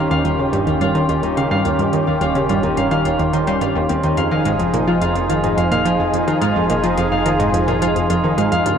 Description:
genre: ambient, sequencer-driven space music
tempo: 107 BPM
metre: 4/4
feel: straight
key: F minor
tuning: A4 = 440 Hz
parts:
  - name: lush unison pad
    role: sustained chords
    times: 0.0-8.8 s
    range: Db3 to Ab4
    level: -19 LUFS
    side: right 1 dB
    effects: chorus
  - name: Celtic harp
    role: arpeggios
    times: 0.0-8.8 s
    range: C4 to F5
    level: -21 LUFS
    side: left 1 dB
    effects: auto-pan, tape echo
  - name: analog pluck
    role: riff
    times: 0.0-8.7 s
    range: Eb2 to G3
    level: -19 LUFS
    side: right 1 dB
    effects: chorus, tape echo
  - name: fat analog bass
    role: bass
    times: 0.0-8.8 s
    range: Eb1 to Db2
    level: -30 LUFS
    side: equal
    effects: none
  - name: electronic hi-hat and percussion blips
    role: percussion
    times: 0.1-8.8 s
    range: none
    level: -35 LUFS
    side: right 2 dB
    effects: tape echo
room: wet spring reverb, RT60 2.4 s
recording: echo-heavy mix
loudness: -15 LUFS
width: side -7 dB against mid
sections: 0.0-8.8 A section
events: fade-in on analog synth bass 0.0-8.8; fade-in on drum 0.0-8.8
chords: 0.0 Eb7; 4.2 Fm7

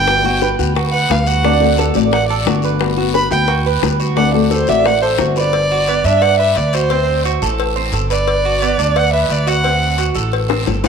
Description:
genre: latin, Cuban son and guajira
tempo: 176 BPM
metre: 4/4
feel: straight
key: G major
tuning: A4 = 440 Hz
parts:
  - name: warm violin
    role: melody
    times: 0.0-10.9 s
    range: A4 to B5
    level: -18 LUFS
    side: equal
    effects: tape echo
  - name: nylon-string guitar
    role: accompaniment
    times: 0.0-5.5 s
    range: D3 to F#4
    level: -20 LUFS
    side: left 12 dB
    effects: none
  - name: Cuban tres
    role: arpeggios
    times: 0.0-10.9 s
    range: B3 to D5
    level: -19 LUFS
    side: right 11 dB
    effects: none
  - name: upright bass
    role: bass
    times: 0.0-10.9 s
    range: G1 to G2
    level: -19 LUFS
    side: equal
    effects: none
  - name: bongos and cowbell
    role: percussion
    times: 0.1-10.9 s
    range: none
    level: -23 LUFS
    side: left 13 dB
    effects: none
  - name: guiro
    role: percussion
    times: 0.1-10.9 s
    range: none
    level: -28 LUFS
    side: left 15 dB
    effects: none
room: moderate echo chamber reverb, RT60 2.7 s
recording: 1960s-style stereo with parts hard left and right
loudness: -13 LUFS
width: side -6 dB against mid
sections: 0.0-5.5 A section; 5.5-10.9 B section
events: violin solo 0.0-5.5; drum fill 10.5-10.9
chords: 0.1 Gmaj7; 1.4 D7; 2.8 Gmaj7; 4.2 D7; 5.5 Gmaj7; 6.9 D7; 8.3 Gmaj7; 9.6 D7

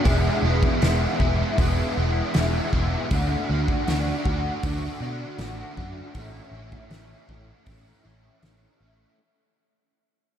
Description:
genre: rock, shoegaze and dream pop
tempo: 79 BPM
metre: 4/4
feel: straight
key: unclear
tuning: A4 = 440 Hz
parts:
  - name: biting overdriven guitar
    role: riff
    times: 0.0-9.2 s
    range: A2 to F#4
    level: -26 LUFS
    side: equal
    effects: ensemble chorus
  - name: vintage muted fingered electric bass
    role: bass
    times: 0.1-9.0 s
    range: E1 to B2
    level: -26 LUFS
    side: equal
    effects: none
  - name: loose indie drum kit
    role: drums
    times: 0.1-8.6 s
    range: hi-hat, kick drum, snare drum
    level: -26 LUFS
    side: equal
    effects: none
room: moderate huge ambient reverb, RT60 4.0 s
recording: dreamy mix soaked in reverb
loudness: -21 LUFS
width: side -9 dB against mid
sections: 0.0-9.2 A section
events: fade-out 0.0-9.2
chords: 0.0 E; 3.1 D; 6.1 A

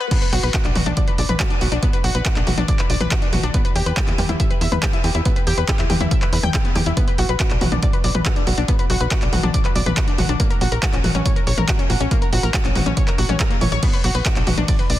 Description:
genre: uplifting trance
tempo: 140 BPM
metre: 4/4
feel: straight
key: B harmonic minor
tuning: A4 = 440 Hz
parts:
  - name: analog pluck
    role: arpeggios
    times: 0.0-15.0 s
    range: A#3 to G5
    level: -24 LUFS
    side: left 3 dB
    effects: chorus, sidechain pumping, tape echo
  - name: electronic kick drum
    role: drums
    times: 0.1-14.8 s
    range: none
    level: -20 LUFS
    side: equal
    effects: none
  - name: punchy analog drum machine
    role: drums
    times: 0.1-15.0 s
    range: crash cymbal, handclaps, hi-hat, ride cymbal, toms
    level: -23 LUFS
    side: equal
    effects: none
  - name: tight sequencer bass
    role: bass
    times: 0.3-15.0 s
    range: A#1 to E2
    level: -21 LUFS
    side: equal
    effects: sidechain pumping
room: light reverb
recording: dense, heavily limited modern master, high-pass filter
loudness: -16 LUFS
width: side -14 dB against mid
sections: 0.1-15.0 A section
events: drop 0.1-15.0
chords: 0.1 Bm; 3.5 Em; 7.0 Bm; 10.4 F#/A#; 13.8 Bm

